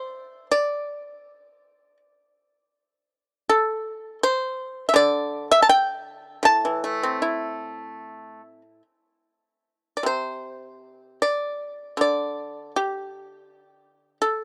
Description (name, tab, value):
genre	chinese traditional, Chinese solo plucked strings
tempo	70-86 BPM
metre	4/4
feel	rubato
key	A yu mode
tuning	A4 = 439 Hz
part	pipa	solo	0.0-14.4 s	A2 to A5	-23 LUFS	equal	none
room	little or no reverb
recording	dry, close 1970s-style studio recording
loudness	-23 LUFS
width	mono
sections	0.0-9.7 A section; 9.7-14.4 B section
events	none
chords	none